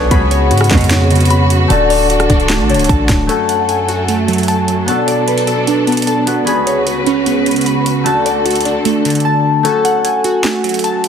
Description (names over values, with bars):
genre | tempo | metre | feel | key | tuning
hip hop, trap | 151 BPM | 4/4 | half-time | F# minor | A4 = 440 Hz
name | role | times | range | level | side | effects
hollow clarinet-like synth lead | second line | 0.0-2.9 s | C#5 to F#5 | -22 LUFS | left 6 dB | chorus, tape echo
concert harp | accompaniment | 0.0-11.1 s | A3 to A5 | -18 LUFS | left 4 dB | none
warm symphonic string section | sustained chords | 0.0-9.6 s | C#2 to B4 | -19 LUFS | equal | none
glassy digital keys | arpeggios | 0.0-11.1 s | C#3 to B5 | -15 LUFS | right 1 dB | chorus, tape echo
hard-hitting 808-style bass | bass | 0.0-3.3 s | C#1 to G#2 | -14 LUFS | equal | none
clear symphonic string section | stabs | 0.1-1.1 s | G#1 to B2 | -21 LUFS | right 5 dB | none
trap drum kit | drums | 0.1-11.1 s | handclaps, hi-hat, kick drum, rim click, snare drum | -18 LUFS | right 1 dB | none
room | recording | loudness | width
light reverb, small room ambience | dense, heavily limited modern master | -11 LUFS | side -8 dB against mid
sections
0.0-3.3 A section; 3.3-9.6 B section; 9.6-11.1 C section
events
drums muted 9.3-9.6; kick muted 9.6-11.1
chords
0.1 C#7sus4; 1.7 D; 3.3 F#madd9; 4.9 Bm7; 6.5 C#7sus4; 8.1 D; 9.6 F#madd9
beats
| 0.11 0.51 0.91 1.30 | 1.70 2.10 2.50 2.89 | 3.29 3.69 4.08 4.48 | 4.88 5.28 5.67 6.07 | 6.47 6.87 7.26 7.66 | 8.06 8.46 8.85 9.25 | 9.65 10.04 10.44 10.84